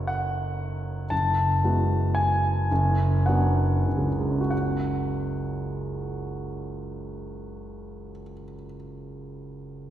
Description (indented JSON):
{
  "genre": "classical, impressionist solo piano",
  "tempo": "45-60 BPM",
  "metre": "3/4",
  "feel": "rubato",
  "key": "F# minor",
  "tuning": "A4 = 440 Hz",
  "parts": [
    { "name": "clear concert grand piano", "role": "solo", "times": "0.0-9.9 s", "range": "F#1 to A5", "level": "-24 LUFS", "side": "equal", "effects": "none" }
  ],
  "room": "wet scoring stage reverb, RT60 1.9 s",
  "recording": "heard from further back in the room",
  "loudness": "-23 LUFS",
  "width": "side -12 dB against mid",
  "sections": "0.0-1.1 A section; 1.1-4.5 B section; 4.5-8.2 C section",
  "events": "slowing down 0.0-4.5",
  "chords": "0.0 F#m6; 1.1 F#m11; 2.7 Bm/F#; 4.5 F#sus2"
}